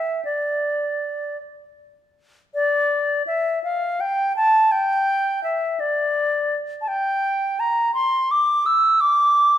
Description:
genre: classical, baroque-style fantasia for unaccompanied flute.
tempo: 56 BPM (dotted quarters).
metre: 6/8.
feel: rubato.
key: D minor.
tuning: A4 = 440 Hz.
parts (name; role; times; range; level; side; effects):
concert flute; solo; 0.0-9.6 s; D5 to E6; -18 LUFS; equal; none.
room: moderate recital hall reverb, RT60 1.6 s.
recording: minimal, uncompressed stereo recording.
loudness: -18 LUFS.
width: side -11 dB against mid.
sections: 0.0-2.5 A section; 2.5-9.6 B section.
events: none.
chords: none.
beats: | 0.24 1.39 | 2.54 3.63 | 4.72 5.80 | 6.88 7.94 | 9.01.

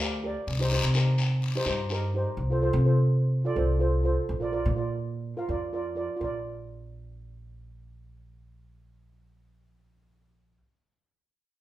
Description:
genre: calypso.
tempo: 125 BPM.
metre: 4/4.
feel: straight.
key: Bb major.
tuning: A4 = 440 Hz.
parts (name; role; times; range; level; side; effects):
steel pan; accompaniment; 0.0-10.6 s; Eb4 to F5; -30 LUFS; right 2 dB; none.
upright bass; bass; 0.0-10.6 s; Bb1 to C3; -27 LUFS; equal; none.
guiro; percussion; 0.5-2.0 s; none; -33 LUFS; left 4 dB; none.
room: wet large studio reverb, RT60 0.9 s.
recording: band playing live in one room.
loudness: -24 LUFS.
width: side -14 dB against mid.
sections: 0.0-6.2 A section; 6.2-10.1 B section.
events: none.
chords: 0.5 Cm7; 2.4 F/C; 4.3 Bb.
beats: | 0.46 0.94 1.42 1.90 | 2.37 2.85 3.33 3.81 | 4.29 4.76 5.24 5.72 | 6.20 6.68 7.16 7.64 | 8.12 8.61 9.09 9.57.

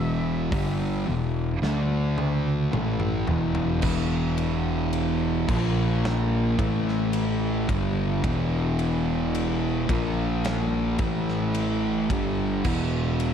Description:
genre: stoner and doom metal.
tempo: 54 BPM.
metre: 4/4.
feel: straight.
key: E minor.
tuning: A4 = 435 Hz.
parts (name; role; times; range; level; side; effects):
octave-fuzz lead guitar; melody; 0.0-2.7 s; E5; -40 LUFS; equal; wah, distortion, analog delay.
thick fuzz guitar; riff; 0.0-13.3 s; E2 to D4; -28 LUFS; left 8 dB; distortion.
thick fuzz guitar; riff; 0.0-13.3 s; E2 to D4; -28 LUFS; right 9 dB; distortion.
fuzz picked electric bass; bass; 0.0-13.3 s; E1 to D2; -28 LUFS; equal; overdrive.
big rock drum kit; drums; 0.5-13.3 s; crash cymbal, hi-hat, kick drum, ride cymbal, snare drum, toms; -31 LUFS; equal; none.
thick fuzz guitar; riff; 3.8-13.3 s; E2 to A#3; -31 LUFS; equal; none.
room: studio reverb.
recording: dark, warm production.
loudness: -22 LUFS.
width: side -8 dB against mid.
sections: 0.0-3.8 A section; 3.8-13.3 B section.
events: drum fill 1.6-3.8.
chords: 0.0 Em; 1.6 D5; 2.7 E5; 5.5 A#5; 6.6 A5; 7.7 Em; 9.9 A#5; 11.0 A5; 12.1 Em.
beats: 0.52 1.62 2.73 | 3.83 4.93 6.03 7.13 | 8.24 9.34 10.44 11.55 | 12.65.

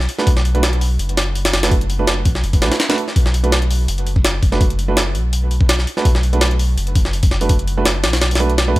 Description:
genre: drum and bass, jungle.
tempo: 166 BPM.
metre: 4/4.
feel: swing 53% on 16ths.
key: B minor.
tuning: A4 = 440 Hz.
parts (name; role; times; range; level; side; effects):
saturated sub bass; bass; 0.0-8.8 s; F#1 to D2; -18 LUFS; equal; none.
jungle sampler-style drum kit; drums; 0.0-8.8 s; hi-hat, kick drum, snare drum; -16 LUFS; equal; none.
clear grand piano; stabs; 0.2-8.8 s; A3 to B4; -23 LUFS; right 4 dB; vintage 12-bit sampler grit, dub echo.
room: digital ambience.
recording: none.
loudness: -14 LUFS.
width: side -18 dB against mid.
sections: 0.0-8.8 A section.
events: none.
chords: 0.0 Bm7.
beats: | 0.27 0.63 0.99 1.35 | 1.72 2.08 2.44 2.80 | 3.16 3.52 3.88 4.25 | 4.61 4.97 5.33 5.69 | 6.05 6.42 6.78 7.14 | 7.50 7.86 8.22 8.58.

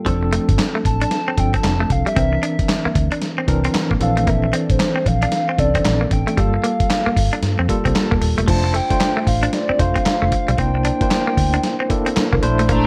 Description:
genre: R&B, new jack swing.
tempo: 114 BPM.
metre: 4/4.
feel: swing 62% on 16ths.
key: F major.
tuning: A4 = 440 Hz.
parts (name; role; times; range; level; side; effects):
tine electric piano; accompaniment; 0.0-12.9 s; E3 to A5; -25 LUFS; equal; fast tremolo.
direct-recorded clean electric guitar; riff; 0.1-12.8 s; F3 to D4; -26 LUFS; equal; lush chorus.
vintage muted fingered electric bass; bass; 0.1-12.9 s; Eb1 to G2; -22 LUFS; equal; none.
dusty soul sampler-style drum kit; drums; 0.1-12.8 s; crash cymbal, handclaps, hi-hat, kick drum, snare drum; -24 LUFS; equal; overdrive, gated reverb.
hollow clarinet-like synth lead; melody; 0.9-12.9 s; C5 to Bb5; -26 LUFS; equal; chorus, phaser.
clear studio string section; sustained chords; 12.7-12.9 s; Bb2 to D4; -22 LUFS; equal; none.
room: light reverb.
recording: none.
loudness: -18 LUFS.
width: mono.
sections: 0.0-8.5 A section; 8.5-12.9 B section.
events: tine electric piano fill 7.7-8.5.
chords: 0.1 F6; 2.2 C9; 4.0 Bbmaj9#11; 6.4 Gm9; 8.5 F6; 10.6 C9.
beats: | 0.06 0.58 1.11 1.64 | 2.16 2.69 3.22 3.74 | 4.27 4.80 5.32 5.85 | 6.38 6.90 7.43 7.95 | 8.48 9.01 9.53 10.06 | 10.59 11.11 11.64 12.16 | 12.69.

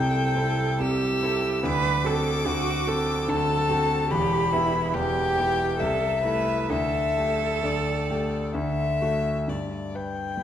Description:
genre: classical, slow romantic movement for piano trio.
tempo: 63-74 BPM.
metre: 3/4.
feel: rubato.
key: unclear.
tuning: A4 = 441 Hz.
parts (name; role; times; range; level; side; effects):
rich violin; melody; 0.0-10.4 s; D5 to E6; -27 LUFS; left 4 dB; none.
warm cello; second line; 0.0-10.4 s; E4 to B4; -28 LUFS; right 5 dB; none.
warm concert grand piano; accompaniment; 0.0-10.4 s; E1 to B4; -26 LUFS; equal; none.
room: wet recital hall reverb, RT60 1.5 s.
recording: dark, warm production.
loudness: -22 LUFS.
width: side -10 dB against mid.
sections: 0.0-9.5 A section.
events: none.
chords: 0.0 Am7/C; 1.6 D7; 4.1 Em; 5.8 Am/C; 6.7 Dsus4; 8.6 D; 9.5 G.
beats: 0.81 | 1.65 2.47 3.29 | 4.12 4.94 5.80 | 6.71 7.64 8.55 | 9.49 10.38.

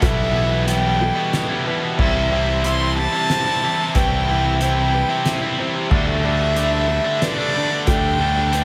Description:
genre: post-rock.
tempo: 92 BPM.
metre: 3/4.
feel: straight.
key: unclear.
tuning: A4 = 440 Hz.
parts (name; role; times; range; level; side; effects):
dark violin; melody; 0.0-8.6 s; D5 to C6; -24 LUFS; equal; analog delay.
rich chamber string section; sustained chords; 0.0-8.6 s; C4 to A5; -38 LUFS; equal; none.
felt-muted upright piano; arpeggios; 0.0-8.6 s; A4 to E5; -35 LUFS; equal; analog delay.
twelve-string electric guitar; arpeggios; 0.0-8.6 s; B2 to D4; -32 LUFS; equal; none.
tight distorted guitar; riff; 0.0-8.6 s; B2 to E4; -28 LUFS; equal; distortion.
tight distorted guitar; riff; 0.0-8.6 s; B2 to E4; -27 LUFS; equal; distortion.
growling picked electric bass; bass; 0.0-8.6 s; B1 to D2; -24 LUFS; equal; overdrive.
soft-mallet drum kit; drums; 0.0-8.6 s; crash cymbal, hi-hat, kick drum, snare drum; -26 LUFS; equal; none.
room: moderate large studio reverb, RT60 1.2 s.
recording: none.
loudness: -19 LUFS.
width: mono.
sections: 0.0-8.6 A section.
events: none.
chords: 0.0 Em/B; 2.0 C; 5.9 Dsus4.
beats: | 0.03 0.68 1.34 | 1.99 2.64 3.30 | 3.95 4.61 5.26 | 5.91 6.57 7.22 | 7.88 8.53.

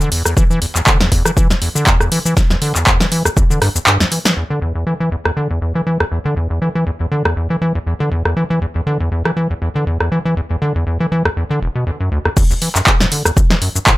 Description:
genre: acid house.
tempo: 120 BPM.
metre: 4/4.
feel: swing 55% on 16ths.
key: E minor.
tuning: A4 = 442 Hz.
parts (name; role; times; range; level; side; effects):
acid bass, square; riff; 0.0-13.9 s; E1 to E3; -17 LUFS; equal; tube saturation, tape echo.
punchy analog drum machine; drums; 0.0-14.0 s; crash cymbal, handclaps, hi-hat, rim click, shaker, snare drum; -15 LUFS; equal; none.
electronic kick drum; drums; 0.4-3.5, 12.4-14.0 s; none; -14 LUFS; equal; none.
room: moderate small room reverb, RT60 0.5 s.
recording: none.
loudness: -13 LUFS.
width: side -18 dB against mid.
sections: 0.0-4.4 A section; 4.4-12.4 B section; 12.4-14.0 C section.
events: kick drops out 3.9-4.4; drum fill 4.0-4.4; drop 12.4-14.0.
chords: none.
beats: | 0.37 0.87 1.37 1.87 | 2.37 2.87 3.37 3.87 | 4.37 4.87 5.37 5.87 | 6.37 6.87 7.37 7.87 | 8.37 8.87 9.37 9.87 | 10.37 10.87 11.37 11.87 | 12.37 12.87 13.37 13.87.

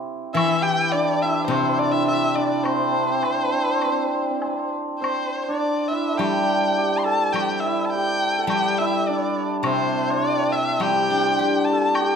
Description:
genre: chinese traditional, Chinese chamber ensemble.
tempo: 104 BPM.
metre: 4/4.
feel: rubato.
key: C gong mode.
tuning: A4 = 440 Hz.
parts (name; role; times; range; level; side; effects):
hammered dulcimer; second line; 0.0-12.2 s; C4 to A4; -22 LUFS; right 2 dB; none.
warm erhu; melody; 0.3-12.2 s; C5 to C6; -24 LUFS; left 1 dB; none.
steel-string zither; accompaniment; 0.3-12.2 s; C3 to G4; -27 LUFS; left 7 dB; none.
woodblock; percussion; 0.4-12.1 s; none; -32 LUFS; left 2 dB; none.
room: moderate recital hall reverb, RT60 1.4 s.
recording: minimal, uncompressed stereo recording.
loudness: -19 LUFS.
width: side -6 dB against mid.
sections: 0.0-5.0 A section; 5.0-12.2 B section.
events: none.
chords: none.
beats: | 0.36 0.93 1.50 2.08 | 2.65 3.22 3.81 4.41 | 5.02 5.61 6.20 6.79 | 7.36 7.93 8.51 9.08 | 9.65 10.22 10.80 11.37 | 11.94.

